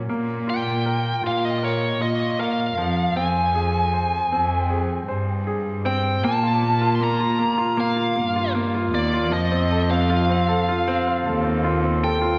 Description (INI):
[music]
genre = pop ballad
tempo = 78 BPM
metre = 4/4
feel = straight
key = unclear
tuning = A4 = 441 Hz
[part]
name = clear concert grand piano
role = accompaniment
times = 0.0-12.4 s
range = F3 to C5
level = -27 LUFS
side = equal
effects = none
[part]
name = warm studio cello section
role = bass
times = 0.0-12.4 s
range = Eb2 to Bb2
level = -26 LUFS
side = equal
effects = none
[part]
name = biting lead guitar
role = melody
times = 0.5-12.4 s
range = Db5 to C6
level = -26 LUFS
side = equal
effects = overdrive, analog delay
[sound]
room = wet lush hall reverb, RT60 2.8 s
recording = dreamy mix soaked in reverb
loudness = -22 LUFS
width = mono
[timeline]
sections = 0.0-6.2 A section; 6.2-12.4 B section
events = none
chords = 0.1 Bb5; 2.8 Fm; 6.2 Bb5; 9.3 F